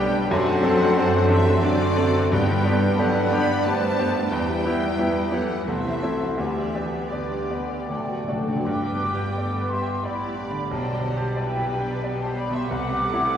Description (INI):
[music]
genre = classical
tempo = 74-94 BPM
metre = 3/4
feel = rubato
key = G major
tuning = A4 = 442 Hz
[part]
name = clear baby grand piano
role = melody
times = 0.0-13.4 s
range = B1 to G5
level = -25 LUFS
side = equal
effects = none
[part]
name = rich studio violin section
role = melody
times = 0.0-13.4 s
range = B4 to B5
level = -34 LUFS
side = left 3 dB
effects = none
[part]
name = dark clarinet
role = second line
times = 0.0-8.3 s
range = D4 to G4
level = -34 LUFS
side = left 3 dB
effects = none
[part]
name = mellow cor anglais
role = second line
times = 0.0-8.3 s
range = G4 to D5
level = -33 LUFS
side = equal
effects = none
[part]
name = mellow large flute ensemble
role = second line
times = 0.0-13.4 s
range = F#4 to D6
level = -30 LUFS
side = equal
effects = none
[part]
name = rich studio violin section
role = second line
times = 0.0-13.4 s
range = B3 to G5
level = -34 LUFS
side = left 2 dB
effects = none
[part]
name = mellow bassoon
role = accompaniment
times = 0.0-8.3 s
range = G3 to B3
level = -31 LUFS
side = right 1 dB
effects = none
[part]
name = rich studio viola section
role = accompaniment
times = 0.0-13.4 s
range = D3 to D5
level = -33 LUFS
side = equal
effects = none
[part]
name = warm French horn section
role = sustained chords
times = 0.0-13.4 s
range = G3 to A4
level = -31 LUFS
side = equal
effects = none
[part]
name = dark studio double bass section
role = bass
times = 0.0-13.4 s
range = G1 to G2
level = -30 LUFS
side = right 2 dB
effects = none
[part]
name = rich studio cello section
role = bass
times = 0.0-13.4 s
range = G2 to B3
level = -30 LUFS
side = right 1 dB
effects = none
[part]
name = timpani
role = percussion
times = 2.3-3.3, 7.9-8.6 s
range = G2 to D3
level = -32 LUFS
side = left 1 dB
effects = none
[sound]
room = wet church reverb, RT60 3.3 s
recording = recorded in a church or concert hall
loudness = -20 LUFS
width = side -9 dB against mid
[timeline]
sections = 0.0-8.7 A section; 8.7-13.4 B section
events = timpani fill 7.9-8.7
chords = 0.3 D7/F#; 2.3 G; 4.3 Em; 5.7 Am/C; 6.4 G/D; 7.9 D; 8.7 G; 10.7 G/B; 12.7 Am7/C